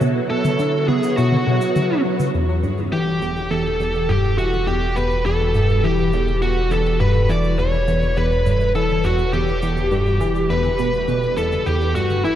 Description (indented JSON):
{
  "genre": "ambient, sequencer-driven space music",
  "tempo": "103 BPM",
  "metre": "4/4",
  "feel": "straight",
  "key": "E dorian",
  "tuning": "A4 = 438 Hz",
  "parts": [
    { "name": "phased string machine", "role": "sustained chords", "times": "0.0-12.4 s", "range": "E3 to F#5", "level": "-30 LUFS", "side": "equal", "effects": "ensemble chorus, phaser" },
    { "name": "tight sequenced synth", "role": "riff", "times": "0.0-12.4 s", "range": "E2 to B3", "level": "-21 LUFS", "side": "equal", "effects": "chorus, tape echo" },
    { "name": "electronic toms and shaker", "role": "percussion", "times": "0.0-12.4 s", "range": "none", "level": "-28 LUFS", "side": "left 1 dB", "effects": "none" },
    { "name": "biting lead guitar", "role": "melody", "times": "0.3-12.4 s", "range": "E4 to D5", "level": "-21 LUFS", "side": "equal", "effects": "overdrive, tape echo" },
    { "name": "warm sub bass", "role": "bass", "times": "2.3-12.4 s", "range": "E1", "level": "-24 LUFS", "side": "equal", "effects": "none" }
  ],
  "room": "wet cathedral reverb, RT60 5.9 s",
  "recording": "in a vast, echoing space, cassette tape",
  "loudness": "-17 LUFS",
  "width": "side -11 dB against mid",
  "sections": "0.0-2.3 A section; 2.3-12.4 B section",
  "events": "none",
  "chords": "0.0 Bsus2; 2.3 Emadd9"
}